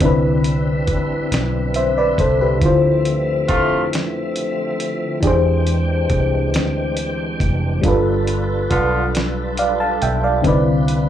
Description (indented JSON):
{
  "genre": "slow six-eight R&B",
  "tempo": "46 BPM (dotted quarters)",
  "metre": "6/8",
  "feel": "straight",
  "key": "unclear",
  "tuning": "A4 = 440 Hz",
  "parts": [
    { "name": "FM electric piano with auto-pan", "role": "accompaniment", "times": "0.0-11.1 s", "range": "D3 to A5", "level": "-18 LUFS", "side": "left 1 dB", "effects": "slapback echo" },
    { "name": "tonewheel organ", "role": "sustained chords", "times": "0.0-11.1 s", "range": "D3 to G5", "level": "-25 LUFS", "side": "right 1 dB", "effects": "overdrive, chorus vibrato, slow rotary speaker" },
    { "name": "vintage muted fingered electric bass", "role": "bass", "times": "0.0-11.1 s", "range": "F1 to F2", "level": "-21 LUFS", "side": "equal", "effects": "none" },
    { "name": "dusty soul sampler-style drum kit", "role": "drums", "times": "0.0-11.1 s", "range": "hi-hat, kick drum, snare drum", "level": "-22 LUFS", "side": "equal", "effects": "none" },
    { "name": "warm horn section", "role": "stabs", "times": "3.5-3.8, 8.7-9.0 s", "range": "C3 to F4", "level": "-18 LUFS", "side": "right 1 dB", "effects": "slapback echo" }
  ],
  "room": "light reverb",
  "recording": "live gig heard through the venue's PA, club reverb",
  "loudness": "-16 LUFS",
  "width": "side -10 dB against mid",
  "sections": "0.0-11.1 A section",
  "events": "none",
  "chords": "0.0 Cmaj9; 2.6 Dm9; 5.2 E7alt; 7.8 G7; 10.4 Cmaj9"
}